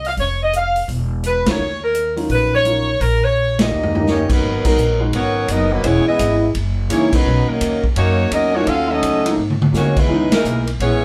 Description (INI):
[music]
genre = jazz, big band swing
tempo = 169 BPM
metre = 4/4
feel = swing 64% on 8ths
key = G# minor from 4.4 s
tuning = A4 = 440 Hz
[part]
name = warm saxophone section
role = melody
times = 0.0-11.0 s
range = Gb3 to F5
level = -21 LUFS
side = equal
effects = none
[part]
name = upright bass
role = bass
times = 0.0-11.0 s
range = E1 to G#2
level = -24 LUFS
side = equal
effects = none
[part]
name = swinging big-band drum kit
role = drums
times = 0.0-10.9 s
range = crash cymbal, hi-hat, kick drum, ride cymbal, snare drum, toms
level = -23 LUFS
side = equal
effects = none
[part]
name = warm baby grand piano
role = accompaniment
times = 1.5-10.3 s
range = E3 to D#5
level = -24 LUFS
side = equal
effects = none
[part]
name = bright trombone section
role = second line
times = 3.6-11.0 s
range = B2 to A#4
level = -26 LUFS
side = equal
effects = none
[sound]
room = wet studio ambience, RT60 0.5 s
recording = band playing live in one room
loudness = -17 LUFS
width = mono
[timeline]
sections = 0.0-4.4 A section; 4.4-11.0 B section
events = band accent 1.4, 3.5, 4.6, 7.1, 10.3; drum fill 3.4-4.1, 9.4-9.7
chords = 0.2 Db/F; 0.9 Esus2; 1.6 Ebm7; 3.0 Bbmadd11; 3.7 Eb7; 4.4 G#m9; 5.8 C#m9; 6.5 F#13; 7.3 Bmaj9; 8.7 D#m7b5; 9.4 G#7; 10.1 C#m9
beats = | 0.17 0.52 0.88 1.23 | 1.59 1.94 2.30 2.65 | 3.00 3.36 3.71 4.07 | 4.42 4.78 5.13 5.49 | 5.84 6.20 6.55 6.90 | 7.26 7.61 7.97 8.32 | 8.67 9.03 9.38 9.74 | 10.09 10.45 10.80